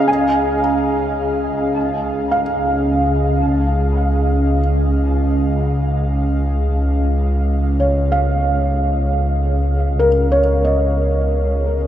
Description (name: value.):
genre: ambient.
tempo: 55 BPM.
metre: 3/4.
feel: straight.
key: Db major.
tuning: A4 = 442 Hz.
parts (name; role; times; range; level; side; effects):
warm analog pad; sustained chords; 0.0-11.9 s; Db4 to F5; -20 LUFS; equal; chorus.
felt-muted upright piano; arpeggios; 0.0-11.9 s; Bb4 to Bb5; -21 LUFS; right 1 dB; diffuse ambient delay.
dark symphonic double bass section; bass; 0.1-11.9 s; Db2; -18 LUFS; equal; none.
room: wet huge ambient reverb, RT60 8.4 s.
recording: dark, warm production.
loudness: -15 LUFS.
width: side -11 dB against mid.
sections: 0.1-11.9 A section.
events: none.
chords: 0.1 Db.